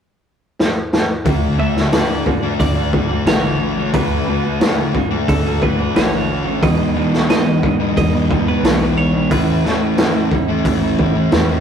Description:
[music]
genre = rock, shoegaze and dream pop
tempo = 89 BPM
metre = 4/4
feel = straight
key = unclear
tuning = A4 = 440 Hz
[part]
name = raw garage drum kit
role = drums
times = 0.6-11.5 s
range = hi-hat, kick drum, snare drum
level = -18 LUFS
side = equal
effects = none
[part]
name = electric guitar at the edge of break-up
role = riff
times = 1.2-11.6 s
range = A2 to F#4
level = -20 LUFS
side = right 3 dB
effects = none
[part]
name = thick fuzz guitar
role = riff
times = 1.3-11.6 s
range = E2 to D4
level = -20 LUFS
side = left 5 dB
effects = distortion
[part]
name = vintage muted picked electric bass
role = bass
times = 1.3-11.6 s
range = A1 to E2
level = -24 LUFS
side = equal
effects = none
[part]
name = twelve-string electric guitar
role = melody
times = 1.6-10.3 s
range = A4 to E5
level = -26 LUFS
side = right 4 dB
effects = none
[sound]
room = moderate stone room reverb, RT60 1.1 s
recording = rough rehearsal-room recording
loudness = -14 LUFS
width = side -8 dB against mid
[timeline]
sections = 0.0-1.3 A section; 1.3-11.6 B section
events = drum fill 0.6-1.3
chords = 0.0 N.C.; 1.3 Dmaj7; 6.6 Emaj7; 9.3 A

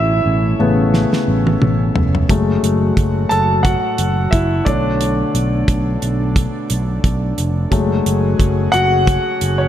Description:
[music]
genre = piano-driven pop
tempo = 88 BPM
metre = 4/4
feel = swing 56% on 16ths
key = F# minor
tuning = A4 = 440 Hz
[part]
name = warm concert grand piano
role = accompaniment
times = 0.0-9.7 s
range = C#3 to A5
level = -18 LUFS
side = left 2 dB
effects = none
[part]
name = airy breathy pad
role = sustained chords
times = 0.0-9.7 s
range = A2 to G#4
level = -25 LUFS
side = right 3 dB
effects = chorus
[part]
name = fingered electric bass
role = bass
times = 0.0-9.7 s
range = E#1 to B1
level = -18 LUFS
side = right 1 dB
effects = none
[part]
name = damped 70s drum kit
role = drums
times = 0.9-9.6 s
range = hi-hat, kick drum, snare drum, toms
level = -18 LUFS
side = equal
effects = none
[sound]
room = light reverb, studio ambience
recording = none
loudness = -14 LUFS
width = side -11 dB against mid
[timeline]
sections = 0.0-9.7 A section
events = grand piano solo 0.0-9.7; drum fill 0.9-2.3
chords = 0.0 Aadd9; 2.3 F#madd9; 4.7 Bm7; 7.7 F#madd9

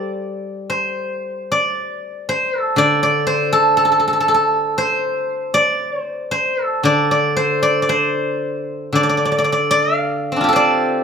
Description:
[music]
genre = chinese traditional, Chinese solo plucked strings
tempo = 57 BPM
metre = 2/4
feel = rubato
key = D yu mode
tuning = A4 = 440 Hz
[part]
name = steel-string zither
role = solo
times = 0.0-11.0 s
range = D3 to F5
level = -15 LUFS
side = equal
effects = none
[sound]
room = light reverb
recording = close, detailed microphones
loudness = -15 LUFS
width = side -6 dB against mid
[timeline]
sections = 0.7-11.0 A section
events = none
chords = none

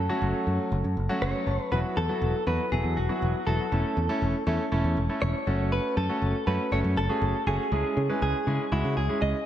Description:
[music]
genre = synth-pop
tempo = 120 BPM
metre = 4/4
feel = straight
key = E major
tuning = A4 = 440 Hz
[part]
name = direct-recorded clean electric guitar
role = melody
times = 0.0-9.5 s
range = E4 to D#5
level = -30 LUFS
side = equal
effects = lush chorus, diffuse ambient delay
[part]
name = picked electric bass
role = bass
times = 0.0-9.3 s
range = E1 to C#3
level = -27 LUFS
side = equal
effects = none
[part]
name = clear concert grand piano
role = accompaniment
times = 0.1-9.3 s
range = F#3 to A5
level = -29 LUFS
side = equal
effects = none
[sound]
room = wet plate reverb, RT60 2.7 s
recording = dreamy mix soaked in reverb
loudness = -24 LUFS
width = side -11 dB against mid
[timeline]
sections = 0.0-1.7 A section; 1.7-9.5 B section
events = grand piano fill 1.0-1.7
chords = 0.0 F#m; 1.7 Esus2; 3.7 A/E; 5.5 F#m; 7.7 C#m

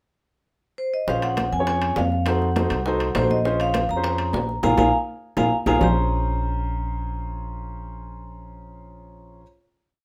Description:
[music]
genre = Afro-Cuban jazz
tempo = 203 BPM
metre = 4/4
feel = straight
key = Bb minor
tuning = A4 = 440 Hz
[part]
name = vibraphone with medium hard mallets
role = melody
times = 0.8-9.4 s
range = C5 to Bb5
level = -28 LUFS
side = equal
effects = none
[part]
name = warm grand piano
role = accompaniment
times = 1.1-9.4 s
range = Db4 to Db5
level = -30 LUFS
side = equal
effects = none
[part]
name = upright bass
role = bass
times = 1.1-9.4 s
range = Bb1 to F2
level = -28 LUFS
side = equal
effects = none
[part]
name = bongos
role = percussion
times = 1.1-5.9 s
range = none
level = -34 LUFS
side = equal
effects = none
[part]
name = congas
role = percussion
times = 1.1-5.9 s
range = none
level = -31 LUFS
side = equal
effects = none
[part]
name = timbales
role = percussion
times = 1.2-5.9 s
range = none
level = -32 LUFS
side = equal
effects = none
[sound]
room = moderate studio reverb, RT60 0.7 s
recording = none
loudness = -22 LUFS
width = mono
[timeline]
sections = 0.0-1.1 pickup bar; 1.1-5.8 A section; 5.8-8.2 final chord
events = drum fill 4.6-5.8; band accent 4.6-5.8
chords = 0.0 N.C.; 1.1 Bbm9; 2.3 F7b9; 3.5 Bbm9

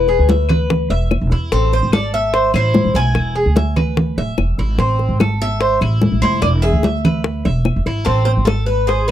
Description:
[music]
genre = latin, Cuban son and guajira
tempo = 146 BPM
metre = 4/4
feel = straight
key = A harmonic minor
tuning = A4 = 440 Hz
[part]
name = Cuban tres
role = melody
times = 0.0-9.1 s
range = G#4 to G#5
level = -20 LUFS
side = left 3 dB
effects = none
[part]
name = Cuban tres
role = arpeggios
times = 0.0-9.1 s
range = C4 to E5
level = -22 LUFS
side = right 2 dB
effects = none
[part]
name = upright bass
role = bass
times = 0.0-9.1 s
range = D1 to E2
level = -17 LUFS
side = right 1 dB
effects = none
[part]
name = bongos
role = percussion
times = 0.1-9.1 s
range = none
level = -22 LUFS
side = left 6 dB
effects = none
[part]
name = congas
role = percussion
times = 0.1-9.1 s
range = none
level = -19 LUFS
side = equal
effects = none
[part]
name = claves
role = percussion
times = 0.5-8.7 s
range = none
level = -30 LUFS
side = left 17 dB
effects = none
[sound]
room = little or no reverb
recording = dry, close 1970s-style studio recording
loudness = -14 LUFS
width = side -11 dB against mid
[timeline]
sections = 0.0-9.1 A section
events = none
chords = 0.0 E7; 1.5 Am; 3.2 E7; 4.8 Am; 6.4 E7; 8.1 Am

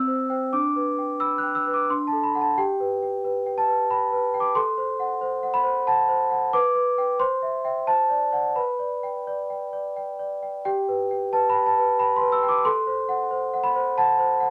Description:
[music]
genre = classical, lullaby for celesta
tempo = 90 BPM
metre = 3/4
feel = rubato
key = G major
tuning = A4 = 440 Hz
[part]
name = large celesta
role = solo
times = 0.0-14.5 s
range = C4 to F#6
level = -24 LUFS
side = equal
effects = none
[sound]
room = moderate studio ambience, RT60 0.5 s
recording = none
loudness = -24 LUFS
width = mono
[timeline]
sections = 0.0-10.7 A section; 10.7-14.5 A section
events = none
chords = 0.0 C; 0.5 G/D; 1.9 D; 2.6 G; 4.6 F#dim/A; 6.5 G/B; 7.2 C; 7.9 D7/C; 8.6 G/B; 10.7 G; 12.7 F#dim/A

